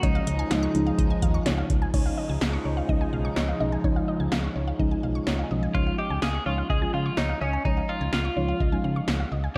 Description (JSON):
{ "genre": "synth-pop", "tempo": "126 BPM", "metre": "4/4", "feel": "straight", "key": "Db mixolydian, Db lydian from 5.7 s", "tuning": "A4 = 440 Hz", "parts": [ { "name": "twelve-string electric guitar", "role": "melody", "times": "0.0-1.4, 5.7-9.6 s", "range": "Db4 to Ab4", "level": "-33 LUFS", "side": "equal", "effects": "slapback echo, tape echo" }, { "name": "muted felt-like synth keys", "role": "accompaniment", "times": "0.0-9.6 s", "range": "F3 to Bb5", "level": "-33 LUFS", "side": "equal", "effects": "chorus" }, { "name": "chorused pulse-width pad", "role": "sustained chords", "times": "0.0-5.7 s", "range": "Db3 to Eb4", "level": "-34 LUFS", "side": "equal", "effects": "none" }, { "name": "resonant blip pluck", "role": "arpeggios", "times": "0.0-9.6 s", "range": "Db5 to Db6", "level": "-38 LUFS", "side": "equal", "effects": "phaser, tape echo" }, { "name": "solid FM bass", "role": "bass", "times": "0.0-9.6 s", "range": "Cb2 to Db3", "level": "-31 LUFS", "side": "equal", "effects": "none" }, { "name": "electro analog drum machine", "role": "drums", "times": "0.0-9.6 s", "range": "crash cymbal, hi-hat, kick drum, snare drum", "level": "-30 LUFS", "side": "equal", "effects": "none" } ], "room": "moderate lush hall reverb, RT60 1.6 s", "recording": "big arena sound", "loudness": "-26 LUFS", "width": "mono", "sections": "0.0-1.9 A section; 1.9-5.7 B section; 5.7-9.6 C section", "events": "synth keys fill 5.0-5.7", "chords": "0.0 Dbadd9" }